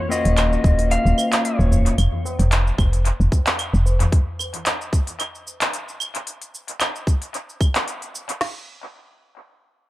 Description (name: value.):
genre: organic downtempo.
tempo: 112 BPM.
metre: 4/4.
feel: swing 54% on 16ths.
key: unclear.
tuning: A4 = 436 Hz.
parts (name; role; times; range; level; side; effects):
clean lap steel guitar; melody; 0.0-1.9 s; Db5 to F5; -24 LUFS; left 1 dB; analog delay.
clean electric guitar; accompaniment; 0.1-2.0 s; Bb3 to Gb4; -26 LUFS; left 2 dB; sidechain pumping, low-pass filter, analog delay.
organic electronic drum kit; drums; 0.1-8.4 s; claves, handclaps, hi-hat, shaker; -25 LUFS; equal; analog delay.
tabla; percussion; 0.1-4.1 s; none; -28 LUFS; left 1 dB; analog delay.
woody FM bass; bass; 0.3-4.1 s; Eb1 to F1; -17 LUFS; equal; sidechain pumping.
organic electronic drum kit; drums; 0.6-8.5 s; crash cymbal, kick drum, snare drum; -18 LUFS; equal; none.
room: light reverb.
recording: echo-heavy mix.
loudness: -18 LUFS.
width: side -17 dB against mid.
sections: 0.0-8.4 A section; 8.4-9.9 B section.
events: filter sweep on clean electric guitar 0.0-2.0.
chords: 0.0 Ebm9; 2.0 N.C..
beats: 0.37 0.91 1.45 | 1.98 2.52 3.05 3.59 | 4.12 4.66 5.20 5.73 | 6.27 6.80 7.34 7.87 | 8.41.